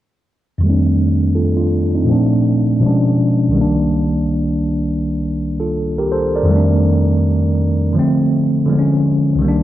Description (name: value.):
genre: hip hop.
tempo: 82 BPM.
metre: 4/4.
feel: swing 59% on 16ths.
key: unclear.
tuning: A4 = 440 Hz.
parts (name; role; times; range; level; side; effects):
tine electric piano; accompaniment; 0.6-9.6 s; C2 to D5; -13 LUFS; equal; fast stereo tremolo, cassette tape, low-pass filter.
room: moderate plate reverb, RT60 2.6 s.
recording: none.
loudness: -13 LUFS.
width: side -13 dB against mid.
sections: 0.6-9.6 A section.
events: filter sweep on tine electric piano 0.6-9.6.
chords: 0.6 F13; 2.1 Bbmaj7; 2.8 Bdim7; 3.6 Cm9; 6.5 F13; 7.9 Dm7; 8.7 Ddim.